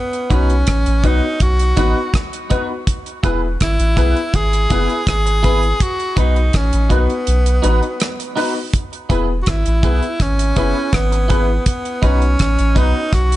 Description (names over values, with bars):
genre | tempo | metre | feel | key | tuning
roots reggae | 82 BPM | 4/4 | straight | E major | A4 = 444 Hz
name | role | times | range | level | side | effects
clear tenor saxophone | melody | 0.0-13.4 s | B3 to G#4 | -21 LUFS | equal | dub echo
damped 70s drum kit | drums | 0.1-13.4 s | hi-hat, kick drum, rim click | -18 LUFS | equal | none
clean electric guitar | accompaniment | 0.3-12.9 s | D#4 to B4 | -27 LUFS | right 5 dB | ensemble chorus, dub echo
warm baby grand piano | stabs | 0.3-13.0 s | B3 to B4 | -24 LUFS | left 6 dB | none
soft dub sub bass | bass | 0.3-13.4 s | E1 to B1 | -16 LUFS | equal | none
room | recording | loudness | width
small room ambience | nothing above 10.6 kHz | -14 LUFS | side -15 dB against mid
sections
0.0-13.4 A section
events
kick muted 7.3-8.7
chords
0.0 B; 2.9 E; 5.8 B; 8.7 E; 11.7 B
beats
0.67 1.41 2.14 | 2.87 3.60 4.34 5.07 | 5.80 6.54 7.27 8.00 | 8.73 9.47 10.20 10.93 | 11.66 12.40 13.13